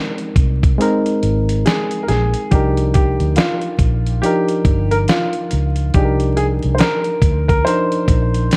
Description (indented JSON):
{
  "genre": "lo-fi hip hop",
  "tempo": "70 BPM",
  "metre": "4/4",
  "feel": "swing 60% on 16ths",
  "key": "C minor",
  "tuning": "A4 = 440 Hz",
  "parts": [
    { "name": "reed electric piano", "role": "accompaniment", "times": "0.0-8.6 s", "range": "F3 to Bb4", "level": "-23 LUFS", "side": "equal", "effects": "low-pass filter" },
    { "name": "dusty soul sampler-style drum kit", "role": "drums", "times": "0.2-8.6 s", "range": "hi-hat, kick drum, snare drum", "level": "-19 LUFS", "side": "equal", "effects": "none" },
    { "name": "vintage muted fingered electric bass", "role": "bass", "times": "0.4-8.5 s", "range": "G1 to D2", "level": "-20 LUFS", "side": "equal", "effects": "none" },
    { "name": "warm upright piano", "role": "melody", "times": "1.7-8.6 s", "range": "F4 to C5", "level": "-23 LUFS", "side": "equal", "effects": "low-pass filter" }
  ],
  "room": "light reverb, digital ambience",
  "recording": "vinyl crackle",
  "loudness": "-16 LUFS",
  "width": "mono",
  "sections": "0.0-8.6 A section",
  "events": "none",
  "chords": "0.0 Bb9sus4; 2.5 Cm11"
}